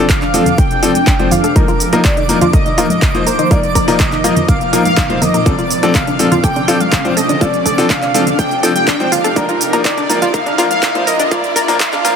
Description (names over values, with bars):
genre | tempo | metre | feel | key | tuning
progressive house | 123 BPM | 4/4 | straight | unclear | A4 = 440 Hz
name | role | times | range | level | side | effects
wide unison lead | melody | 0.0-12.2 s | Bb4 to G5 | -18 LUFS | equal | wide subtle chorus, cassette tape, digital delay
shimmering ambient pad | sustained chords | 0.0-12.2 s | Bb2 to Bb4 | -22 LUFS | right 2 dB | chorus, built-in reverb, sidechain pumping
bright concert grand piano | stabs | 0.0-12.1 s | F3 to C5 | -17 LUFS | left 3 dB | sidechain pumping, low-pass filter, dub echo
riser | sound effects | 1.9-12.2 s | none | -25 LUFS | right 2 dB | none
twinkling granular texture | texture | 0.0-12.2 s | D6 | -27 LUFS | right 5 dB | built-in reverb, sidechain pumping
deep house drum kit | drums | 0.1-12.2 s | handclaps, hi-hat, shaker | -20 LUFS | right 2 dB | sidechain pumping on perc, sidechain pumping on hats
electronic kick drum | drums | 0.1-11.9 s | none | -16 LUFS | equal | none
analog pluck | arpeggios | 0.2-12.1 s | D4 to Eb5 | -20 LUFS | equal | chorus, sidechain pumping, dub echo
congas and bongos | percussion | 0.3-12.1 s | none | -24 LUFS | left 2 dB | sidechain pumping on perc
room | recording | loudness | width
light reverb, digital ambience | high-pass filter | -11 LUFS | side -7 dB against mid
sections
0.0-12.2 A section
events
build-up 0.0-12.2; filter sweep on synth arpeggio sound 0.0-12.2; filter sweep on ambient pad 0.0-12.2; filter sweep 0.0-12.2; riser 1.9-12.2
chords
0.0 F6; 1.6 Ebsus2; 5.5 Dm7; 9.4 Bb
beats
0.10 0.58 1.07 | 1.56 2.05 2.54 3.02 | 3.51 4.00 4.49 4.97 | 5.46 5.95 6.44 6.92 | 7.41 7.90 8.39 8.88 | 9.36 9.85 10.34 10.83 | 11.31 11.80